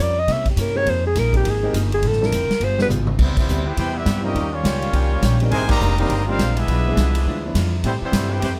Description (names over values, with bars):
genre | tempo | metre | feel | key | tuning
jazz, big band swing | 206 BPM | 4/4 | swing 61% on 8ths | unclear | A4 = 440 Hz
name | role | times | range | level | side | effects
breathy alto saxophone | melody | 0.0-2.9 s | G4 to E5 | -23 LUFS | equal | none
archtop guitar, miked and amplified | accompaniment | 0.0-8.6 s | C3 to C5 | -32 LUFS | equal | none
upright bass | bass | 0.0-8.6 s | F1 to C3 | -23 LUFS | equal | none
swinging big-band drum kit | drums | 0.3-8.5 s | crash cymbal, hi-hat, kick drum, ride cymbal, snare drum, toms | -27 LUFS | equal | none
warm baby grand piano | accompaniment | 0.8-7.5 s | F3 to B4 | -30 LUFS | equal | none
bright trumpet section | melody | 3.2-8.5 s | G3 to Bb5 | -29 LUFS | equal | none
bright trombone section | second line | 3.2-8.5 s | C3 to G4 | -29 LUFS | equal | none
mellow saxophone section | sustained chords | 3.2-8.6 s | C3 to G4 | -36 LUFS | equal | none
room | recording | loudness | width
little or no reverb | close, detailed microphones | -20 LUFS | mono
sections
0.0-3.2 A section; 3.2-8.6 B section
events
alto saxophone solo 0.0-3.2; drum fill 2.9; band accent 3.3, 5.7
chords
0.3 C7b9; 0.9 Fm11; 2.0 Dm9; 2.6 G7b9; 3.2 Cmaj7; 4.3 Eb13; 5.5 Abmaj9#11; 6.7 E7b9; 7.8 Am9